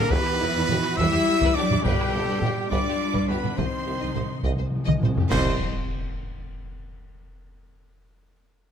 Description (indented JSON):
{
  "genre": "cinematic, epic orchestral film score",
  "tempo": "69 BPM (dotted quarters)",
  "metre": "6/8",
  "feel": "straight",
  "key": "unclear",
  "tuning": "A4 = 439 Hz",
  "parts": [
    { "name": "clear studio violin section", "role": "second line", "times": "0.0-5.6 s", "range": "C5 to E6", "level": "-34 LUFS", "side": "right 1 dB", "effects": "none" },
    { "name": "hollow flute section", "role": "second line", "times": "0.0-5.6 s", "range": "C5 to E6", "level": "-36 LUFS", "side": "left 1 dB", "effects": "none" },
    { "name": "warm symphonic viola section", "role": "accompaniment", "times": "0.0-5.6 s", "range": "Eb4 to C5", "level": "-34 LUFS", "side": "right 1 dB", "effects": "none" },
    { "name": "dark French horn section", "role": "sustained chords", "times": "0.0-5.5 s", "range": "G3 to E4", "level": "-28 LUFS", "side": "left 6 dB", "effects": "none" },
    { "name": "mellow trumpet", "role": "stabs", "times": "0.0-5.6 s", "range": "G4 to E5", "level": "-30 LUFS", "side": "right 2 dB", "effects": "none" },
    { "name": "rich symphonic cello section", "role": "bass", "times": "0.0-5.6 s", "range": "B2 to C4", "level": "-31 LUFS", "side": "right 3 dB", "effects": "none" },
    { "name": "warm symphonic violin section", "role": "melody", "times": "0.1-5.6 s", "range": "D4 to Eb5", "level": "-36 LUFS", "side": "left 1 dB", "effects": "none" },
    { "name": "clear tuba", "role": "bass", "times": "0.1-5.6 s", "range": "E1 to C2", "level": "-34 LUFS", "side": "right 5 dB", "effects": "none" },
    { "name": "rich symphonic double bass section", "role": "bass", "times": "0.1-5.6 s", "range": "C2 to G2", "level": "-30 LUFS", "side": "right 2 dB", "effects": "none" },
    { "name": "taiko ensemble", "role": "drums", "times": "0.1-6.4 s", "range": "none", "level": "-26 LUFS", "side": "equal", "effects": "none" },
    { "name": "timpani", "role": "percussion", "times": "1.8-5.6 s", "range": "G2 to C3", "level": "-32 LUFS", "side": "left 1 dB", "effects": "none" },
    { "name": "clash cymbals and concert bass drum", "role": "percussion", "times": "5.3-6.4 s", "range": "none", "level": "-33 LUFS", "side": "left 1 dB", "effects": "none" },
    { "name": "impact", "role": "sound effects", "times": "5.3-7.0 s", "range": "none", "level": "-38 LUFS", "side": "left 1 dB", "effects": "none" }
  ],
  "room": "light reverb",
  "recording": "close, detailed microphones",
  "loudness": "-21 LUFS",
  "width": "side -8 dB against mid",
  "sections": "0.0-5.3 A section; 5.3-7.0 B section",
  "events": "timpani fill 3.6-5.3; drum fill 4.9-5.3; band accent 5.3-5.9; impact 5.3-7.0",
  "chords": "0.1 Em; 1.8 G; 3.6 Cm; 5.3 C5",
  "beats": "| 0.10 0.97 | 1.84 2.71 | 3.58 4.44 | 5.31 6.18"
}